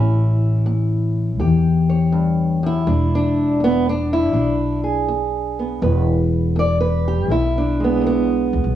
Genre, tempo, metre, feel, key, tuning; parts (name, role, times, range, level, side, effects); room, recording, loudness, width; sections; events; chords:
acoustic country blues, solo or duo; 82 BPM; 4/4; swing 68% on 8ths; A4 = 440 Hz
fingerpicked old ladder-braced acoustic guitar; melody; 0.0-8.8 s; E2 to D5; -20 LUFS; right 1 dB; cassette tape
upright bass; bass; 0.0-8.8 s; E1 to E2; -18 LUFS; left 1 dB
light reverb, small room reverb; home recording on cassette, small room ambience; -16 LUFS; side -11 dB against mid
0.0-8.8 A section
0.0 A7; 2.9 E7